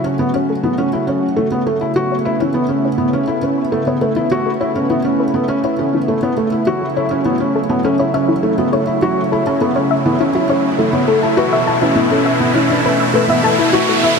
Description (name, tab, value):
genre	piano and strings electronica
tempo	102 BPM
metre	4/4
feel	straight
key	F# minor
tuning	A4 = 440 Hz
part	lush unison pad	sustained chords	0.0-14.2 s	B2 to F#4	-19 LUFS	right 1 dB	chorus
part	felt-muted upright piano	riff	0.0-14.1 s	A3 to F#4	-17 LUFS	equal	ping-pong delay
part	soft round pluck	arpeggios	0.1-14.1 s	E4 to E6	-20 LUFS	left 3 dB	chorus, ping-pong delay
part	riser	sound effects	8.7-14.2 s	none	-22 LUFS	right 1 dB	none
room	wet huge ambient reverb, RT60 5.2 s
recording	none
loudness	-13 LUFS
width	side -5 dB against mid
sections	0.0-14.2 A section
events	build-up 0.0-14.2; filter sweep on analog synth pad 0.0-14.2; filter sweep on synth arpeggio sound 0.0-14.2; riser 8.7-14.2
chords	0.0 F#m7; 11.4 Esus4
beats	0.20 0.79 1.38 | 1.97 2.56 3.15 3.73 | 4.32 4.91 5.50 6.09 | 6.67 7.26 7.85 8.44 | 9.03 9.62 10.21 10.79 | 11.38 11.97 12.56 13.15 | 13.73